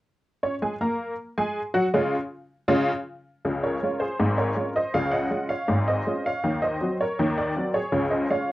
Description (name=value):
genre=ragtime piano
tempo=80 BPM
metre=2/4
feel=straight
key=Db major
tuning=A4 = 440 Hz
part: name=honky-tonk upright piano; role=solo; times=0.4-8.5 s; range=Ab1 to Db6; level=-23 LUFS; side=equal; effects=none
room=moderate studio ambience, RT60 0.5 s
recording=worn, warbling old tape, cassette tape, warbly pitch drift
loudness=-23 LUFS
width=side -16 dB against mid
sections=0.4-3.4 A section; 3.4-8.5 B section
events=none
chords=0.4 Db; 6.4 Cdim/Eb; 7.9 Db